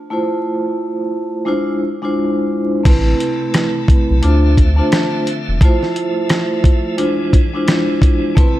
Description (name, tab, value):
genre	hip hop, boom-bap hip-hop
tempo	87 BPM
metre	4/4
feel	swing 61% on 16ths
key	A harmonic minor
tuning	A4 = 441 Hz
part	vibraphone with soft mallets	accompaniment	0.1-8.6 s	G#3 to C5	-17 LUFS	equal	cassette tape
part	tonewheel organ	sustained chords	2.9-8.6 s	C3 to E5	-26 LUFS	equal	overdrive, fast rotary speaker
part	soft dub sub bass	bass	2.9-5.6 s	E1 to D2	-13 LUFS	equal	none
part	dusty soul sampler-style drum kit	drums	2.9-8.6 s	crash cymbal, hi-hat, kick drum, rim click, snare drum	-13 LUFS	equal	none
room	light reverb, digital ambience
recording	dark, warm production, vinyl crackle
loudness	-13 LUFS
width	side -14 dB against mid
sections	0.0-2.9 A section; 2.9-8.6 B section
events	none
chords	0.1 Fmaj7; 1.5 E7b9b13; 2.9 Amadd9; 4.2 Dm7; 5.6 Fmaj7; 7.0 E7b9b13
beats	| 0.09 0.78 1.47 2.16 | 2.85 3.54 4.23 4.92 | 5.61 6.30 6.99 7.68 | 8.37